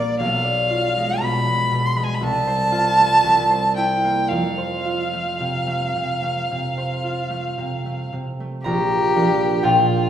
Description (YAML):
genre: classical, romantic duo for violin and harp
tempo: 54-62 BPM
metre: 4/4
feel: rubato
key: F major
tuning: A4 = 440 Hz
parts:
  - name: clear violin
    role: melody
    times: 0.0-10.1 s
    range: F4 to C6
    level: -20 LUFS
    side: right 1 dB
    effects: none
  - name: concert harp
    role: accompaniment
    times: 0.0-10.1 s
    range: Bb1 to Bb5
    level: -22 LUFS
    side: equal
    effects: none
room: wet recital hall reverb, RT60 1.3 s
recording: heard from further back in the room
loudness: -18 LUFS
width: side -10 dB against mid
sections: 0.0-8.7 A section; 8.7-10.1 B section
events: none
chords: 0.2 Bdim7; 2.2 F/C; 3.2 C7; 4.3 F; 8.7 Bb